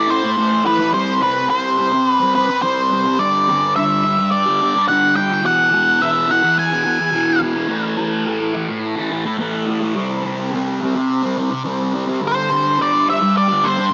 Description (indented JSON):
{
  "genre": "rock",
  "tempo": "106 BPM",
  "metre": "4/4",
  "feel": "straight",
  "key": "A dorian",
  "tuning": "A4 = 440 Hz",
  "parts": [
    { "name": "octave-fuzz lead guitar", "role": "melody", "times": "0.0-7.4, 12.3-13.9 s", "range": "B4 to G#5", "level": "-15 LUFS", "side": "equal", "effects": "distortion, dub echo" },
    { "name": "thick fuzz guitar", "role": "riff", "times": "0.0-13.9 s", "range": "E2 to C4", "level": "-18 LUFS", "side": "equal", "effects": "distortion, phaser, dub echo" }
  ],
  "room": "moderate spring reverb, RT60 2.5 s",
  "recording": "echo-heavy mix, small speaker sound",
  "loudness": "-14 LUFS",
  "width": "side -38 dB against mid",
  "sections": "0.0-13.9 A section",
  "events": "none",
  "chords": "0.0 Am; 0.9 C5; 3.2 G5; 5.5 E; 7.7 A5; 10.0 C5; 12.2 G5",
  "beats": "0.37 | 0.94 1.50 2.06 2.63 | 3.19 3.76 4.32 4.89 | 5.45 6.02 6.58 7.15 | 7.71 8.28 8.84 9.41 | 9.97 10.54 11.10 11.67 | 12.24 12.80 13.37"
}